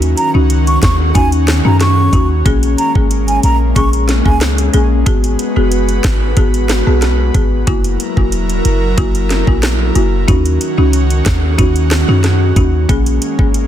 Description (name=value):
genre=dancehall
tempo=92 BPM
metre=4/4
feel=straight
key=G# minor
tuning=A4 = 440 Hz
part: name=folk marimba with medium mallets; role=accompaniment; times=0.0-13.6 s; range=A#3 to G#4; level=-18 LUFS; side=left 3 dB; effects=none
part: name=airy breathy pad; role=sustained chords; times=0.0-13.7 s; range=D#3 to B4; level=-19 LUFS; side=right 1 dB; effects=chorus, sidechain pumping
part: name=warm 808-style bass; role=bass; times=0.0-13.7 s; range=E1 to F#2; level=-13 LUFS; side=equal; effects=none
part: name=island pop drum kit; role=drums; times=0.0-13.7 s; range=hi-hat, kick drum, rim click, snare drum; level=-16 LUFS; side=equal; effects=none
part: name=breathy mellow concert flute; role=melody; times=0.2-4.4 s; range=G#5 to C#6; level=-18 LUFS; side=right 2 dB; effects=digital delay
room=little or no reverb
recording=dense, heavily limited modern master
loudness=-10 LUFS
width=side -10 dB against mid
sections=0.0-13.7 A section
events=none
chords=0.0 D#m7; 2.5 G#sus24; 5.1 G#m7; 7.7 F#7; 10.3 D#m7; 12.9 G#sus24